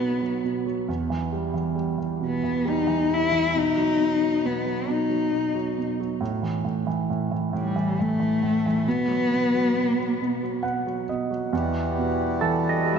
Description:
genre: acoustic folk-pop ballad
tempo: 45 BPM (dotted quarters)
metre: 6/8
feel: straight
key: E harmonic minor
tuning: A4 = 440 Hz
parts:
  - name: dark cello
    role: melody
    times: 0.0-13.0 s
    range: G3 to E4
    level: -24 LUFS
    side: left 3 dB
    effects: analog delay
  - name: warm concert grand piano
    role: accompaniment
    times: 0.0-13.0 s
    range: E2 to F#5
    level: -26 LUFS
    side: right 4 dB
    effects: none
  - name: pedal harmonium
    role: sustained chords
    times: 11.5-13.0 s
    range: E3 to F#4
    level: -26 LUFS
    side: left 2 dB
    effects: none
  - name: clean electric guitar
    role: arpeggios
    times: 12.4-13.0 s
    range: A4 to D#5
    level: -24 LUFS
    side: right 6 dB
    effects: harmonic tremolo, analog delay
room: wet lush hall reverb, RT60 2.9 s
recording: dreamy mix soaked in reverb, nothing above 7.9 kHz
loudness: -22 LUFS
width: side -6 dB against mid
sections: 0.0-11.5 A section; 11.5-13.0 A section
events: none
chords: 0.0 B5; 0.9 Em; 3.6 B; 6.2 A5; 8.9 B5; 11.5 Emadd9

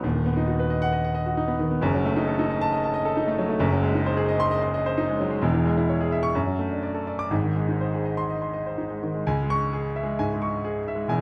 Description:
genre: classical, virtuoso piano study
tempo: 121-137 BPM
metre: 4/4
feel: rubato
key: C# minor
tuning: A4 = 442 Hz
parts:
  - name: clear grand piano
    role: solo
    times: 0.0-11.2 s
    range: D#1 to D6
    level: -25 LUFS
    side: equal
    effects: none
room: moderate recital hall reverb, RT60 1.5 s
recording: dark, warm production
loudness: -25 LUFS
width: mono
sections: 0.0-9.3 A section; 9.3-11.2 B section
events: none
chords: 0.0 B/D#; 1.8 D#dim/F#; 3.6 G#7/F#; 5.4 C#m/E; 6.3 D/F#; 7.3 G#; 9.3 C#m

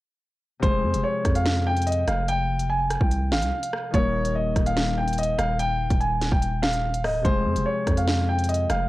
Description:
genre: hip hop, drill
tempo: 145 BPM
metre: 4/4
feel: half-time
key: F minor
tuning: A4 = 442 Hz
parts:
  - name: dark concert grand piano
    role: melody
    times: 0.6-8.9 s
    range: C5 to Ab5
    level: -25 LUFS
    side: equal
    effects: analog delay
  - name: Celtic harp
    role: accompaniment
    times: 0.6-8.9 s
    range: C3 to Bb4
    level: -31 LUFS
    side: left 4 dB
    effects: none
  - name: growling 808-style bass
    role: bass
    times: 0.6-8.9 s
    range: Db1 to F2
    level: -26 LUFS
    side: equal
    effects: none
  - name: drill drum kit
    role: drums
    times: 0.6-8.8 s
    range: hi-hat, kick drum, rim click, snare drum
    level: -26 LUFS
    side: equal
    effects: none
room: digital ambience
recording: dry, gritty hardware recording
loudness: -21 LUFS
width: side -17 dB against mid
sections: 0.6-8.9 A section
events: none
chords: 0.6 Fmadd9; 3.9 Eb; 7.2 Fm

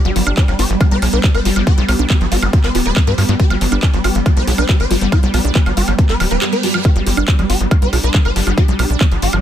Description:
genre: psychedelic trance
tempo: 139 BPM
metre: 4/4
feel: straight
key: G major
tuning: A4 = 440 Hz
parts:
  - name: swarming drone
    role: sustained chords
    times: 0.0-9.4 s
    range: G3 to D4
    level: -22 LUFS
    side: equal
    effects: built-in reverb, sidechain pumping
  - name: swarming rave lead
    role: melody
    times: 0.1-9.4 s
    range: G3 to C5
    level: -21 LUFS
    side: equal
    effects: chorus, phaser, sidechain pumping, digital delay
  - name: wide unison pluck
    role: riff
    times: 0.1-9.4 s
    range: F3 to Ab4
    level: -24 LUFS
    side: moving between left 3 dB and right 7 dB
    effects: auto-pan, sidechain pumping, digital delay
  - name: tight sequencer bass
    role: bass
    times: 0.1-9.4 s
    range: D1 to G2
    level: -17 LUFS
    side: equal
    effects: none
  - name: drum and bass drum kit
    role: drums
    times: 0.1-9.4 s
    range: handclaps, hi-hat, woodblock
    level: -22 LUFS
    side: right 1 dB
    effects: none
  - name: electronic kick drum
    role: drums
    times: 0.4-9.1 s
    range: none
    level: -13 LUFS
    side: equal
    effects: none
  - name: reverse cymbal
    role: sound effects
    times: 6.2-6.8 s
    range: none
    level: -27 LUFS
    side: right 8 dB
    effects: none
room: little or no reverb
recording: dense, heavily limited modern master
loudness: -12 LUFS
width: side -10 dB against mid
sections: 0.0-9.4 A section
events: reverse cymbal 6.2-6.8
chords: 0.0 G5

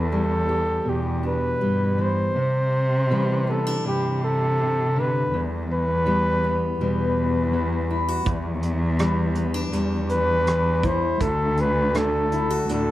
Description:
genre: acoustic folk-pop ballad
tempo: 81 BPM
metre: 4/4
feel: straight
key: E minor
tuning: A4 = 442 Hz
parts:
  - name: breathy flugelhorn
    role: melody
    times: 0.0-12.9 s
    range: G4 to C5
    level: -24 LUFS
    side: equal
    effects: none
  - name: fingerpicked steel-string acoustic guitar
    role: accompaniment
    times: 0.0-12.9 s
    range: E2 to G4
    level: -26 LUFS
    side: left 1 dB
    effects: none
  - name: warm cello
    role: bass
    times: 0.0-12.9 s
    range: D2 to C3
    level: -24 LUFS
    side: equal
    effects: none
  - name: soft brush drum kit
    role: drums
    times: 8.3-12.9 s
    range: hi-hat, kick drum, rim click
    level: -28 LUFS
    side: right 2 dB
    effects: none
room: light reverb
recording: close, detailed microphones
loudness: -20 LUFS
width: side -15 dB against mid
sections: 0.0-2.4 A section; 2.4-12.9 B section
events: none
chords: 0.0 Em7; 2.4 Cadd9; 5.3 Em; 8.3 Em7; 11.2 D

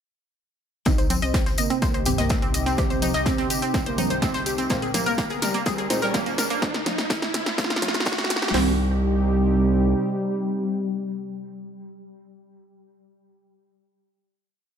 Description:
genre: melodic techno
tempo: 125 BPM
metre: 4/4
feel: straight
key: C minor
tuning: A4 = 439 Hz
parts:
  - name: expressive portamento lead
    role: melody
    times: 0.9-12.0 s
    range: G3 to Eb4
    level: -28 LUFS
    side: equal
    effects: analog chorus, sidechain pumping, tape echo
  - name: warm analog pad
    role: sustained chords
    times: 0.9-12.0 s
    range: C3 to Bb5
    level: -31 LUFS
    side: right 1 dB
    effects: chorus, sidechain pumping
  - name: analog pluck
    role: arpeggios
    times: 0.9-8.8 s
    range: Bb3 to Eb5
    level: -28 LUFS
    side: right 1 dB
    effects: chorus, sidechain pumping, dub echo
  - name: filtered dub chord stab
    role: stabs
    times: 0.9-12.0 s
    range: G2 to C4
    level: -30 LUFS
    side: right 3 dB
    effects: phaser, sidechain pumping, dub echo
  - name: gritty driven synth bass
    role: bass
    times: 0.9-9.9 s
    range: G1 to C2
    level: -28 LUFS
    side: equal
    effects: sidechain pumping
  - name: analog drone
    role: drone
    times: 1.6-12.0 s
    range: C3 to G4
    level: -36 LUFS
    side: left 2 dB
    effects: chorus, phaser, sidechain pumping
  - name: punchy analog drum machine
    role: drums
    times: 0.9-8.7 s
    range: hi-hat, kick drum, snare drum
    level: -26 LUFS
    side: equal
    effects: overdrive
  - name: punchy analog drum machine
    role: drums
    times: 0.9-8.6 s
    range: congas, hi-hat, snare drum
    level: -28 LUFS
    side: equal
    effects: overdrive
  - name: soft brush drum kit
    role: drums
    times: 0.9-8.4 s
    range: hi-hat, snare drum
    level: -38 LUFS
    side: left 3 dB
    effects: none
  - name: tambourine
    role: percussion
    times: 0.9-6.6 s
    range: none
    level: -34 LUFS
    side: left 5 dB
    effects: none
  - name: riser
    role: sound effects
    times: 3.9-8.5 s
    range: none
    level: -32 LUFS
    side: right 1 dB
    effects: none
room: light reverb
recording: high-pass filter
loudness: -21 LUFS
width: side -8 dB against mid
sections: 0.9-8.5 build; 8.5-12.4 final chord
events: build-up 0.9-8.5; drum fill 0.9-8.5; filter sweep 0.9-8.5; riser 3.9-8.5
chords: 0.9 Cm; 4.7 Abadd9; 8.5 Cm

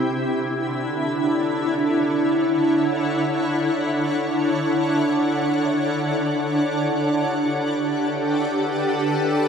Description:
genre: ambient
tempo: free time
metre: none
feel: none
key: D major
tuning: A4 = 440 Hz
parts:
  - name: shimmering ambient pad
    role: solo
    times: 0.0-9.5 s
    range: D3 to F#5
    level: -19 LUFS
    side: equal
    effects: chorus, built-in reverb
room: wet huge ambient reverb, RT60 8.0 s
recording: in a vast, echoing space, cassette tape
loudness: -19 LUFS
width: side -7 dB against mid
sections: 0.0-9.5 A section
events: none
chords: 0.0 Dmaj9; 6.1 Em11/D

